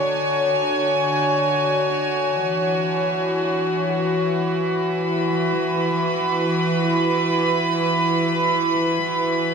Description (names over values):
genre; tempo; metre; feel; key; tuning
ambient; free time; none; none; unclear; A4 = 444 Hz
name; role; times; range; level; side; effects
warm studio string section; solo; 0.0-9.5 s; D3 to B5; -18 LUFS; equal; tape echo
room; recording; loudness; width
wet concert hall reverb, RT60 2.3 s; dark, warm production; -18 LUFS; side -6 dB against mid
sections
0.0-9.5 A section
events
none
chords
0.0 Dmaj7; 2.4 Esus2